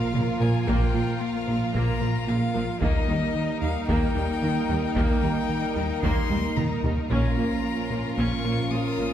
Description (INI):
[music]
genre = cinematic, hybrid orchestral and electronic film score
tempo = 112 BPM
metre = 4/4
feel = straight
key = Bb dorian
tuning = A4 = 440 Hz
[part]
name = rich violin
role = melody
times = 0.0-9.1 s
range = Eb5 to Eb6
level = -33 LUFS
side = left 6 dB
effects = ping-pong delay
[part]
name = warm symphonic violin section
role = melody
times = 0.0-9.1 s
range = Bb4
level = -39 LUFS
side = left 1 dB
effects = none
[part]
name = clear symphonic violin section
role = second line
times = 0.0-9.1 s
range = Eb4 to F4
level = -37 LUFS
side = left 1 dB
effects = none
[part]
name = warm French horn section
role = sustained chords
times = 0.0-9.1 s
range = Bb3 to F4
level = -32 LUFS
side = equal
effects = none
[part]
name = warm analog pad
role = sustained chords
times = 0.0-9.1 s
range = F3 to Bb4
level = -32 LUFS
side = equal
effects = chorus
[part]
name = thumb-piano-like synth pluck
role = arpeggios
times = 0.0-9.1 s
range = Eb3 to Bb4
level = -36 LUFS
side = right 3 dB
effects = none
[part]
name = round analog bass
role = riff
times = 0.0-9.1 s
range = Eb2 to Bb3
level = -30 LUFS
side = left 1 dB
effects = none
[part]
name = impact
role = sound effects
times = 0.3-0.7 s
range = none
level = barely audible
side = none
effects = none
[part]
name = rich symphonic viola section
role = accompaniment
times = 0.1-9.1 s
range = Db3 to Db4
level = -34 LUFS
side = right 2 dB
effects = none
[part]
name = rich studio cello section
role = bass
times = 0.1-9.1 s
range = Bb2 to Eb3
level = -32 LUFS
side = right 2 dB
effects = none
[part]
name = rich symphonic double bass section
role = bass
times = 0.1-9.1 s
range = Bb1 to Eb2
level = -32 LUFS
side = right 2 dB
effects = none
[part]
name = taiko ensemble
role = drums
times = 0.1-8.7 s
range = none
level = -29 LUFS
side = equal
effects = none
[sound]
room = wet scoring stage reverb, RT60 1.5 s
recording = heard from further back in the room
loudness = -22 LUFS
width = side -10 dB against mid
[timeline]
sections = 0.0-9.1 A section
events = impact 0.0-0.7; drum fill 6.3-7.1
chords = 0.0 Bb5; 2.8 Eb; 7.1 Bbm